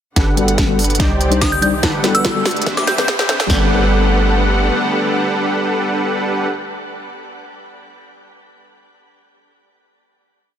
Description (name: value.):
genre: future bass.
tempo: 144 BPM.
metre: 4/4.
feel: half-time.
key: G major.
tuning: A4 = 440 Hz.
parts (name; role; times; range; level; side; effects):
muted studio string section; sustained chords; 0.2-6.5 s; D3 to F#5; -26 LUFS; equal; sidechain pumping.
supersaw stab; riff; 0.2-6.5 s; D4 to G5; -20 LUFS; right 1 dB; cassette tape, sidechain pumping, low-pass filter, dub echo.
warm 808-style bass; bass; 0.2-4.7 s; G1 to C2; -19 LUFS; equal; sidechain pumping.
big-room dance drum kit; drums; 0.2-3.6 s; kick drum, snare drum; -19 LUFS; equal; none.
trap drum kit; drums; 0.2-3.5 s; hi-hat, snare drum; -21 LUFS; equal; none.
riser; sound effects; 1.0-3.5 s; none; -30 LUFS; right 2 dB; none.
mellow tine electric piano; accompaniment; 0.4-6.5 s; E3 to F#5; -22 LUFS; left 3 dB; medium stereo tremolo, sidechain pumping, dub echo.
glassy synth bell; melody; 1.4-3.3 s; D6 to G6; -22 LUFS; equal; chorus, sidechain pumping, dub echo.
room: moderate shimmer reverb, RT60 5.2 s.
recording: dense, heavily limited modern master, high-pass filter.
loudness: -13 LUFS.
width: side -9 dB against mid.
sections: 0.2-3.5 build; 3.5-6.8 final chord.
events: build-up 0.2-3.5; drum fill 0.2-3.5; filter sweep on supersaw synth 0.2-3.5; filter sweep 0.2-3.5; riser 1.0-3.5.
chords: 0.2 Gmaj9; 1.0 Cmadd9; 1.8 Gmaj9; 2.7 Cmaj9; 3.5 Gmaj9.